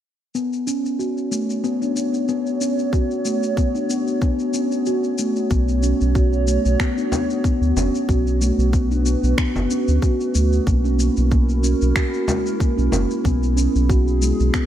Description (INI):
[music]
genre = organic downtempo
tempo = 93 BPM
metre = 4/4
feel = swing 55% on 16ths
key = unclear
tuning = A4 = 443 Hz
[part]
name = warbly tape-like pad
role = sustained chords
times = 1.2-14.7 s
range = B3 to C#5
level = -28 LUFS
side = right 3 dB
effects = chorus, built-in reverb, sidechain pumping
[part]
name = steel tongue drum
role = arpeggios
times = 0.3-14.7 s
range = G#3 to F#4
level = -21 LUFS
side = left 1 dB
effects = low-pass filter, tape echo
[part]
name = electronic shaker and finger snaps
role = drums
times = 0.4-14.7 s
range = none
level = -29 LUFS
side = left 2 dB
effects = none
[part]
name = electronic kick drum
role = drums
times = 2.9-14.7 s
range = none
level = -20 LUFS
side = equal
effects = none
[part]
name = round analog bass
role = bass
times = 5.5-14.5 s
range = F#1 to D2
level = -19 LUFS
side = equal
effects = sidechain pumping
[part]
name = frame drum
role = percussion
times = 7.1-13.1 s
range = none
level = -26 LUFS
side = left 1 dB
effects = none
[sound]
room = light reverb, digital ambience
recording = none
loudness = -17 LUFS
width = side -11 dB against mid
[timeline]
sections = 0.3-5.5 A section; 5.5-14.7 B section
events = kick drops out 4.9-5.5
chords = 0.3 B5; 5.5 Bm; 10.7 F#7/B; 13.3 E/B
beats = | 0.35 0.99 1.64 2.28 | 2.93 3.57 4.22 4.86 | 5.51 6.15 6.80 7.45 | 8.09 8.73 9.38 10.03 | 10.67 11.32 11.96 12.61 | 13.25 13.90 14.54